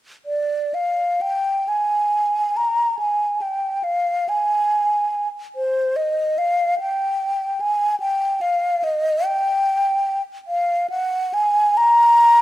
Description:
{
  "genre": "classical, free, expressive piece for unaccompanied flute",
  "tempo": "41-50 BPM (dotted quarters)",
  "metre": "6/8",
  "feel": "rubato",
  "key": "unclear",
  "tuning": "A4 = 440 Hz",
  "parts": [
    { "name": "mellow hollow concert flute", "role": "solo", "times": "0.3-12.4 s", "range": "C5 to Bb5", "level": "-17 LUFS", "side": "equal", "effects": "none" }
  ],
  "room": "light reverb",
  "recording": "close, detailed microphones",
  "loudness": "-18 LUFS",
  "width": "side -15 dB against mid",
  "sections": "0.3-12.4 A section",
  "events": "none",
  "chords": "none",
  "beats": "| 0.26 1.67 | 2.98 4.28 | 5.57 6.80 | 8.01 9.25 | 10.47 11.77"
}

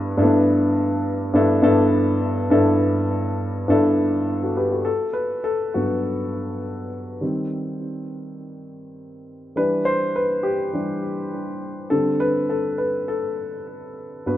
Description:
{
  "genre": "soul",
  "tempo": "102 BPM",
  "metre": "4/4",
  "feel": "straight",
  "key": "G major",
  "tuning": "A4 = 442 Hz",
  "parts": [
    { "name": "dark grand piano", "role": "solo", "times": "0.0-14.4 s", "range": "G2 to C5", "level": "-19 LUFS", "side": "left 1 dB", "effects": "tape echo" }
  ],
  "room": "light reverb, small room ambience",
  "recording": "rough home demo mix, nothing above 7.5 kHz",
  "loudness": "-19 LUFS",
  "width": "side -13 dB against mid",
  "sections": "0.2-4.9 A section; 4.9-14.4 B section",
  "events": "grand piano solo 4.9-14.4",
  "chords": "0.2 G69; 4.9 Gmaj7; 7.2 Eb6; 9.6 Em7; 11.9 D7sus4",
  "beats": "| 0.17 0.76 1.34 1.93 | 2.52 3.10 3.69 4.28 | 4.87 5.45 6.04 6.63 | 7.22 7.80 8.39 8.98 | 9.57 10.15 10.74 11.33 | 11.92 12.51 13.09 13.68 | 14.27"
}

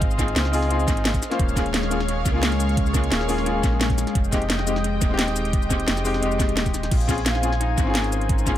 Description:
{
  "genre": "liquid drum and bass",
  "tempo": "174 BPM",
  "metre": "4/4",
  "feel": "straight",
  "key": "F minor",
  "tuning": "A4 = 440 Hz",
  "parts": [
    { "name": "clear grand piano", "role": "accompaniment", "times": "0.0-8.6 s", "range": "Ab3 to C5", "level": "-26 LUFS", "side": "left 2 dB", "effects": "dub echo" },
    { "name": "lush unison pad", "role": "sustained chords", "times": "0.0-8.6 s", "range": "Ab3 to Ab5", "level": "-28 LUFS", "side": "left 2 dB", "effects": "chorus, sidechain pumping" },
    { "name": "sub bass with octave", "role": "bass", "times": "0.0-8.6 s", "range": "Eb1 to Db2", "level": "-25 LUFS", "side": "equal", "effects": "none" },
    { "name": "electronic kick drum", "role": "drums", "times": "0.0-8.5 s", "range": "none", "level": "-23 LUFS", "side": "equal", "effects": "none" },
    { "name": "garage drum kit", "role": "drums", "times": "0.0-8.6 s", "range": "cabasa, crash cymbal, hi-hat, snare drum", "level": "-26 LUFS", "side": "equal", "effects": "tape echo" },
    { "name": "concert harp", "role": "arpeggios", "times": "6.9-8.6 s", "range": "Eb4 to F5", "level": "-29 LUFS", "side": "left 3 dB", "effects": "dub echo" }
  ],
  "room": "light reverb, digital ambience",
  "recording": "echo-heavy mix",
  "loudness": "-19 LUFS",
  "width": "side -12 dB against mid",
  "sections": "0.0-8.6 A section",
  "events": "none",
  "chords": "0.0 Dbmaj9; 1.2 Eb9sus4; 4.2 Fm7; 6.9 Bbm9",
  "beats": "| 0.02 0.36 0.70 1.05 | 1.40 1.74 2.08 2.43 | 2.77 3.12 3.46 3.81 | 4.15 4.50 4.84 5.19 | 5.53 5.88 6.22 6.57 | 6.91 7.26 7.60 7.95 | 8.29"
}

